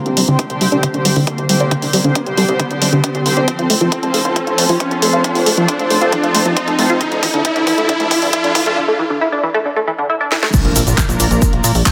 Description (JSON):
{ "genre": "uplifting trance", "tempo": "136 BPM", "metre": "4/4", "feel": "straight", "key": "F major", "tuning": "A4 = 436 Hz", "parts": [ { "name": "analog string pad", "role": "sustained chords", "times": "0.0-11.9 s", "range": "D3 to C5", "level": "-21 LUFS", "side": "equal", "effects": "ensemble chorus, sidechain pumping" }, { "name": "riser and impact", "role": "sound effects", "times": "0.0-11.9 s", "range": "none", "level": "-23 LUFS", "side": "equal", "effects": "none" }, { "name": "tight sequenced synth", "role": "arpeggios", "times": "0.1-10.5 s", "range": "D3 to C5", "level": "-20 LUFS", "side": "equal", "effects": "chorus, phaser, sidechain pumping, dub echo" }, { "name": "plucky analog bass", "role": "bass", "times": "0.1-11.8 s", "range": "D1 to Bb2", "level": "-23 LUFS", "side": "equal", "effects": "sidechain pumping, high-pass filter" }, { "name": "house drum kit", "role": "drums", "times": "0.1-11.9 s", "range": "crash cymbal, handclaps, hi-hat, ride cymbal, snare drum", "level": "-21 LUFS", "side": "equal", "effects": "none" }, { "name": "electronic kick drum", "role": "drums", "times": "0.4-11.9 s", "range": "none", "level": "-20 LUFS", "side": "equal", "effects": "high-pass filter on kick, high-pass filter on room" }, { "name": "egg shaker", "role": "percussion", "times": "10.5-11.9 s", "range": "none", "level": "-23 LUFS", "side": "equal", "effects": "none" } ], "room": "moderate lush hall reverb, RT60 2.1 s", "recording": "high-pass filter", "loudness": "-15 LUFS", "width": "mono", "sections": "0.0-10.5 A section; 10.5-11.9 B section", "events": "build-up 0.0-10.5; riser 0.0-8.8; filter sweep on synth arpeggio sound 0.0-10.5; drum fill 3.5-8.8, 10.3; drop 10.5-11.9; impact 10.5-11.9", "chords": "0.0 Csus2; 3.5 F; 7.0 Dmadd9; 10.5 Bb", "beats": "0.39 0.83 1.27 | 1.71 2.15 2.60 3.04 | 3.48 3.92 4.36 4.80 | 5.24 5.68 6.12 6.57 | 7.01 7.45 7.89 8.33 | 8.77 9.21 9.65 10.10 | 10.54 10.98 11.42 11.86" }